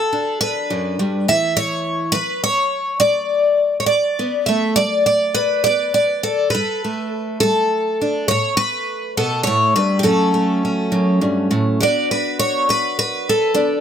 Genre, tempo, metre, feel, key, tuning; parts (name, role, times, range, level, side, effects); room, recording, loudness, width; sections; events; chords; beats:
folk, solo fingerstyle acoustic guitar; 68 BPM (dotted quarters); 6/8; straight; B minor; A4 = 439 Hz
picked twelve-string acoustic guitar; solo; 0.0-13.8 s; F#2 to E5; -16 LUFS; equal
light reverb; close, detailed microphones; -16 LUFS; side -8 dB against mid
0.0-11.8 A section; 11.8-13.8 B section
0.0 Gadd9; 1.3 A; 3.0 D5/A; 4.8 Gadd9; 10.0 F#m; 11.8 Bm7
0.41 | 1.28 2.15 | 3.02 3.90 | 4.78 5.67 | 6.55 7.42 | 8.29 9.16 | 10.04 10.92 | 11.80 12.69 | 13.57